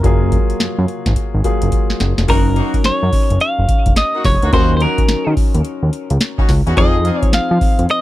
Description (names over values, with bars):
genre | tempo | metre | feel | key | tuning
R&B, new jack swing | 107 BPM | 4/4 | swing 63% on 16ths | unclear | A4 = 440 Hz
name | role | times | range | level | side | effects
clean electric guitar | melody | 0.0-8.0 s | Bb4 to F5 | -19 LUFS | equal | tape echo
warm concert grand piano | accompaniment | 0.0-8.0 s | F3 to Bb4 | -22 LUFS | left 3 dB | none
fat analog bass | bass | 0.0-7.9 s | F1 to F3 | -16 LUFS | equal | none
booming analog drum machine | drums | 0.0-8.0 s | crash cymbal, hi-hat, kick drum, snare drum | -16 LUFS | equal | none
warm horn section | stabs | 2.3-7.2 s | Bb3 to Ab4 | -26 LUFS | equal | tape echo
room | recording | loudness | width
little or no reverb | dry, close 1970s-style studio recording | -13 LUFS | side -15 dB against mid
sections
0.0-2.3 A section; 2.3-8.0 B section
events
drum fill 1.2-2.3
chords
0.0 Gbmaj9; 2.3 Gb6; 4.5 Ebm7; 6.8 Fm7